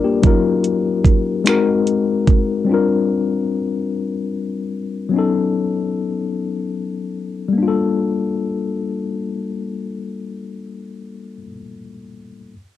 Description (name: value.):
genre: slow six-eight R&B.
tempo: 49 BPM (dotted quarters).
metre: 6/8.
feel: straight.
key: unclear.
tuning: A4 = 440 Hz.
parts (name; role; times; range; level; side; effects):
mellow tine electric piano; accompaniment; 0.0-12.5 s; Gb3 to D5; -19 LUFS; left 5 dB; overdrive, medium stereo tremolo.
smooth R&B drum kit; drums; 0.2-2.5 s; finger snaps, hi-hat, kick drum; -14 LUFS; right 2 dB; cassette tape.
room: light reverb.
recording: home recording on cassette.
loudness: -17 LUFS.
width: side -12 dB against mid.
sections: 0.0-7.6 A section; 7.6-10.0 B section.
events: none.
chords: 0.2 Ebm7; 1.5 Ab9; 2.7 Bb6; 5.1 B7; 7.6 Gm9.